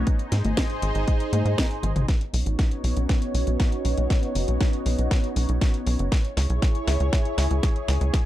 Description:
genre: italo disco.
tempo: 119 BPM.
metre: 4/4.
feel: straight.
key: unclear.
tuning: A4 = 440 Hz.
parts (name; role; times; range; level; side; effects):
lush unison pad; sustained chords; 0.0-8.3 s; A#3 to D5; -29 LUFS; equal; chorus, phaser.
tight sequencer bass; bass; 0.0-8.1 s; F#1 to G#2; -23 LUFS; equal; none.
electronic kick drum; drums; 0.1-8.2 s; none; -22 LUFS; equal; none.
house drum kit; drums; 0.1-8.2 s; congas, hi-hat, snare drum, toms; -30 LUFS; left 1 dB; high-pass filter on hats, high-pass filter on snare, high-pass filter on perc, high-pass filter on toms, high-pass filter on room.
room: little or no reverb.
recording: dry, close 1970s-style studio recording.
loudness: -21 LUFS.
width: side -14 dB against mid.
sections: 0.0-2.1 A section; 2.1-8.3 B section.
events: drum fill 1.8, 2.1-8.3; filter sweep on analog synth pad 2.1-8.3.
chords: 0.1 G#; 2.1 Badd9; 6.1 C#m.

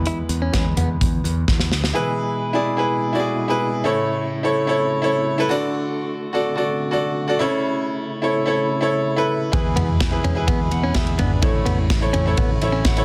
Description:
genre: piano-driven pop.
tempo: 127 BPM.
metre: 4/4.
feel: straight.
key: A major.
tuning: A4 = 436 Hz.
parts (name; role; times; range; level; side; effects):
bright upright piano; accompaniment; 0.0-13.0 s; A2 to F#5; -23 LUFS; equal; plate reverb.
modern bright picked electric bass; bass; 0.0-1.9, 9.5-13.0 s; G#1 to E2; -26 LUFS; equal; none.
direct-recorded clean electric guitar; riff; 0.1-0.9, 9.8-12.8 s; B3 to E4; -29 LUFS; equal; none.
modern studio drum kit; drums; 0.1-1.9, 9.5-13.0 s; hi-hat, kick drum, ride cymbal, snare drum, toms; -23 LUFS; equal; none.
percussive tonewheel organ; sustained chords; 2.0-13.0 s; B2 to F#4; -30 LUFS; equal; overdrive, chorus vibrato, slow rotary speaker.
room: light reverb, small room ambience.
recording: dense, heavily limited modern master.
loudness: -20 LUFS.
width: mono.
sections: 0.0-2.0 A section; 2.0-13.0 B section.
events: upright piano solo 0.0-2.0; drum fill 1.5-2.0; upright piano fill 12.4-13.0.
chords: 0.0 E; 3.9 A; 5.5 D; 7.4 A/C#; 9.5 E; 11.4 A.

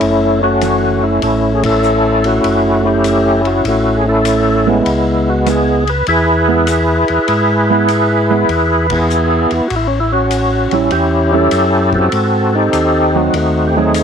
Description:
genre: soul jazz organ trio.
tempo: 99 BPM.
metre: 4/4.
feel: swing 68% on 8ths.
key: C# minor.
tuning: A4 = 439 Hz.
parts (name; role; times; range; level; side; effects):
overdriven tonewheel organ; melody; 0.0-14.0 s; G#3 to B4; -12 LUFS; equal; chorus vibrato, slow rotary speaker.
mellow tonewheel organ; bass; 0.0-14.0 s; F#1 to G#2; -18 LUFS; equal; slow rotary speaker.
vintage drum kit; drums; 0.0-14.0 s; hi-hat, kick drum, ride cymbal; -26 LUFS; left 9 dB; none.
hollow-body jazz guitar; accompaniment; 0.6-1.0, 4.7-13.9 s; E3 to E4; -18 LUFS; right 14 dB; none.
room: studio reverb.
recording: 1960s-style stereo with parts hard left and right, faint mains hum.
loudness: -11 LUFS.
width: side -7 dB against mid.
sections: 0.0-14.0 A section.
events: band accent 1.5-1.8, 8.8-9.1.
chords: 0.0 F#m7; 4.9 C#m7; 9.7 A7; 12.1 G#7b9.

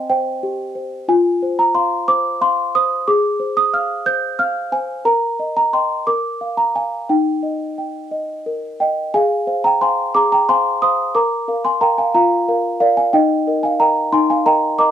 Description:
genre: classical, lullaby for celesta.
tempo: 60 BPM (dotted quarters).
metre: 6/8.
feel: straight.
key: Eb major.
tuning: A4 = 439 Hz.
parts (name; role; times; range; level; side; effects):
small celesta; solo; 0.0-14.9 s; C4 to G6; -15 LUFS; equal; none.
room: light reverb.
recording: dry, close 1970s-style studio recording.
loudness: -15 LUFS.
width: side -10 dB against mid.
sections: 0.0-9.1 A section; 9.1-14.9 A section.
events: none.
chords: 0.0 Cm; 1.1 F5; 3.1 Fm/Ab; 5.1 Eb/Bb; 6.1 Bb; 7.1 Eb; 9.1 Fm/Ab; 11.1 Bb; 13.1 Eb.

